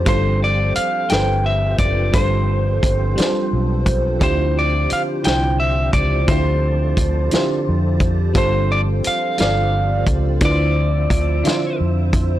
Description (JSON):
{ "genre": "slow six-eight R&B", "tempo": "58 BPM (dotted quarters)", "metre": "6/8", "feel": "straight", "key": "D minor", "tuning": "A4 = 440 Hz", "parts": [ { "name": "FM electric piano with soft pad layer", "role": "accompaniment", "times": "0.0-12.4 s", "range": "D3 to D5", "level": "-22 LUFS", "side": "right 1 dB", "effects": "chorus" }, { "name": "tonewheel organ", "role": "sustained chords", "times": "0.0-12.4 s", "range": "D3 to E5", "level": "-29 LUFS", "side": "equal", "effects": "chorus vibrato, slow rotary speaker" }, { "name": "vintage muted fingered electric bass", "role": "bass", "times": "0.0-12.4 s", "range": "F#1 to F2", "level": "-19 LUFS", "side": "equal", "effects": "none" }, { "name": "lightly driven lead guitar", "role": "melody", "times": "0.1-11.8 s", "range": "C5 to G5", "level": "-22 LUFS", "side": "equal", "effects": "tape echo" }, { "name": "warm soul drum kit", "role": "drums", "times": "0.1-12.3 s", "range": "hi-hat, kick drum, snare drum", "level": "-19 LUFS", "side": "equal", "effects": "soft clipping on kick" } ], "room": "light reverb", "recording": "blown-out, overdriven recording, overdrive", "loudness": "-15 LUFS", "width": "side -13 dB against mid", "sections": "0.0-12.4 A section", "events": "none", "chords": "0.1 G9sus4; 4.2 Dm11; 8.3 G9sus4; 10.4 Dm9" }